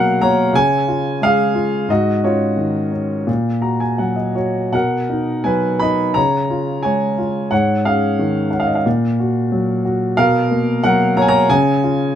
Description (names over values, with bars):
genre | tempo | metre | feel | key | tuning
classical, lyrical solo piano | 81-93 BPM | 4/4 | rubato | unclear | A4 = 440 Hz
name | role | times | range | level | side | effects
dark grand piano | solo | 0.0-12.2 s | Ab2 to B5 | -14 LUFS | equal | none
room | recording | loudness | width
light reverb | close, detailed microphones | -15 LUFS | side -10 dB against mid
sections
0.0-12.2 A section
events
grand piano fill 3.3-4.7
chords
0.0 B5; 0.5 Db; 1.9 Ab7sus4; 3.3 Gb69/Bb; 4.7 Bmaj7; 6.2 Db; 7.5 Absus4; 8.9 Gb/Bb; 10.2 B5; 11.5 Db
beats
0.55 1.22 | 1.90 2.58 3.28 4.00 | 4.74 5.46 6.16 6.84 | 7.52 8.19 8.86 9.52 | 10.17 10.83 11.50